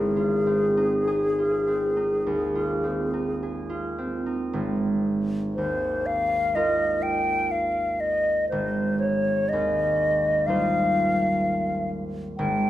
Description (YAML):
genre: classical, impressionist duo for flute and harp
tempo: 49-64 BPM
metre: 4/4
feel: rubato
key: Ab major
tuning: A4 = 435 Hz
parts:
  - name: hollow concert flute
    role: melody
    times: 0.0-12.7 s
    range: Ab4 to G5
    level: -23 LUFS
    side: left 1 dB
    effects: none
  - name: concert harp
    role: accompaniment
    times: 0.0-12.7 s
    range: Ab1 to C5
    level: -26 LUFS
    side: right 1 dB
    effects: none
room: moderate recital hall reverb, RT60 1.6 s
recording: minimal, uncompressed stereo recording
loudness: -22 LUFS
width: side -13 dB against mid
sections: 0.0-4.5 A section; 4.5-12.7 B section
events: none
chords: 0.0 Ab6; 4.5 Ab69; 8.5 Fm9/Ab